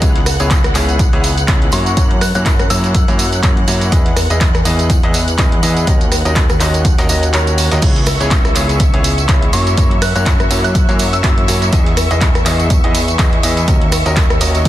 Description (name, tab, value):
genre	piano house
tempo	123 BPM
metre	4/4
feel	swing 56% on 16ths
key	unclear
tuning	A4 = 440 Hz
part	analog string pad	sustained chords	0.0-14.7 s	E5 to F#6	-24 LUFS	left 1 dB	ensemble chorus, sidechain pumping
part	bright concert grand piano	riff	0.0-14.7 s	A#3 to D#5	-20 LUFS	equal	sidechain pumping, dub echo
part	fat analog bass	bass	0.0-14.7 s	C#2 to F#2	-17 LUFS	equal	tube saturation, sidechain pumping
part	dusty soul sampler-style drum kit	drums	0.0-14.7 s	hi-hat, snare drum	-30 LUFS	left 1 dB	none
part	electronic kick drum	drums	0.0-14.7 s	none	-14 LUFS	equal	none
part	punchy analog drum machine	drums	0.0-14.7 s	crash cymbal, handclaps, hi-hat, ride cymbal, rim click, tambourine	-19 LUFS	right 1 dB	none
part	tambourine	percussion	0.0-14.7 s	none	-29 LUFS	right 1 dB	none
part	glassy synth bell	melody	1.7-3.2, 9.5-11.5 s	C#6 to F#6	-24 LUFS	left 1 dB	chorus, tremolo, dub echo
room	digital ambience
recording	dense, heavily limited modern master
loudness	-11 LUFS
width	side -14 dB against mid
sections	0.0-14.7 A section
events	kick drops out 7.3-7.8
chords	0.0 C#m7; 1.7 F#7; 3.9 Emaj7; 5.9 D#m7; 7.8 C#m7; 9.5 F#7; 11.7 Emaj7; 13.7 D#m7